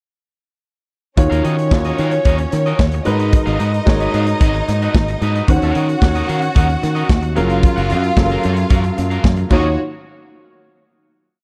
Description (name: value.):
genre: disco.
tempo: 112 BPM.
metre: 4/4.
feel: straight.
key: Eb minor.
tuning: A4 = 440 Hz.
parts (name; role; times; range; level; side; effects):
clear studio string section; second line; 1.2-9.8 s; Bb3 to Gb5; -24 LUFS; equal; none.
electric guitar at the edge of break-up; accompaniment; 1.2-9.7 s; Db4 to Gb5; -29 LUFS; equal; none.
warm concert grand piano; accompaniment; 1.2-9.8 s; Eb3 to Db5; -24 LUFS; equal; none.
fingered electric bass; bass; 1.2-9.8 s; Gb1 to Eb3; -21 LUFS; equal; none.
modern studio drum kit; drums; 1.2-9.6 s; crash cymbal, hi-hat, kick drum, snare drum; -18 LUFS; equal; none.
room: light reverb, studio reverb.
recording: dark, warm production.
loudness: -16 LUFS.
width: mono.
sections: 1.2-9.8 verse; 9.8-11.4 final hit.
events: none.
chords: 1.2 Ebm7; 3.1 Abm7; 5.5 Ebm7; 7.4 Gbmaj7; 9.5 Ebm7; 9.8 N.C..